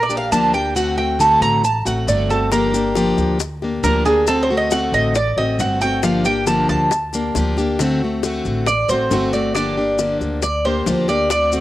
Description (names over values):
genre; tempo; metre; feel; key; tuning
latin, Cuban son and guajira; 136 BPM; 4/4; straight; G minor; A4 = 442 Hz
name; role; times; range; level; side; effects
Cuban tres; arpeggios; 0.0-11.6 s; Ab4 to Bb5; -18 LUFS; right 2 dB; cassette tape
upright bass; bass; 0.0-11.6 s; G1 to D2; -24 LUFS; equal; none
picked plugged-in steel-string acoustic guitar; accompaniment; 0.1-11.6 s; D3 to G4; -20 LUFS; left 2 dB; cassette tape
maracas; percussion; 0.1-11.6 s; none; -29 LUFS; left 6 dB; none
bongos; percussion; 2.5-11.5 s; none; -26 LUFS; left 7 dB; none
room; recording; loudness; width
moderate spring reverb, RT60 1.5 s; home recording on cassette; -15 LUFS; side -15 dB against mid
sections
0.0-11.6 A section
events
Cuban tres solo 0.0-11.6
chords
0.0 Gm7; 0.8 D7; 2.5 Gm7; 4.3 D7; 6.0 Gm9; 7.8 D7; 9.6 Gm7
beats
0.32 | 0.76 1.20 1.64 2.08 | 2.52 2.96 3.40 3.84 | 4.28 4.72 5.16 5.60 | 6.04 6.48 6.92 7.36 | 7.79 8.23 8.67 9.11 | 9.55 9.99 10.43 10.87 | 11.31